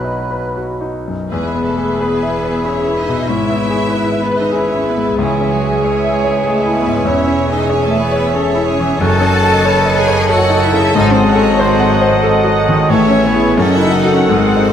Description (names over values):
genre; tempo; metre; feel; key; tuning
classical; 77-99 BPM; 3/4; rubato; E major; A4 = 440 Hz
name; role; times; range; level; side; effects
clear grand piano; melody; 0.0-14.7 s; B1 to F#5; -16 LUFS; left 2 dB; none
bright clarinet; second line; 0.0-14.7 s; D#4 to D#5; -24 LUFS; right 1 dB; none
mellow concert flute; second line; 0.0-14.7 s; F#5 to B5; -23 LUFS; left 1 dB; none
mellow cor anglais; second line; 0.0-14.7 s; E4 to D#5; -23 LUFS; right 3 dB; none
mellow bassoon; accompaniment; 0.0-14.7 s; D#3 to F#3; -24 LUFS; right 2 dB; none
warm studio violin section; melody; 1.3-14.7 s; D#5 to F#5; -26 LUFS; right 1 dB; none
clear studio violin section; second line; 1.3-14.7 s; E4 to A5; -24 LUFS; left 2 dB; none
warm studio viola section; accompaniment; 1.3-14.7 s; G#4 to F#5; -24 LUFS; right 2 dB; none
dark French horn section; sustained chords; 1.3-14.7 s; F#4 to E5; -25 LUFS; left 4 dB; none
rich studio double bass section; bass; 1.3-14.7 s; E1 to C#2; -22 LUFS; right 4 dB; none
warm studio cello section; bass; 1.3-14.7 s; E3 to A4; -20 LUFS; right 1 dB; none
room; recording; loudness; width
wet recital hall reverb, RT60 1.6 s; none; -11 LUFS; side -9 dB against mid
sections
0.0-1.3 A section; 1.3-14.7 A section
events
none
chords
0.0 B; 1.3 E; 3.3 E/G#; 5.2 C#m; 7.1 C#m/E; 9.0 D#m7b5/F#; 11.0 G#7b9; 12.9 Amaj7; 13.6 D#m7b5/F#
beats
0.56 | 1.30 1.99 2.65 | 3.29 3.92 4.55 | 5.18 5.82 6.45 | 7.06 7.68 8.32 | 9.00 9.66 10.31 | 10.96 11.60 12.25 | 12.90 13.59 14.30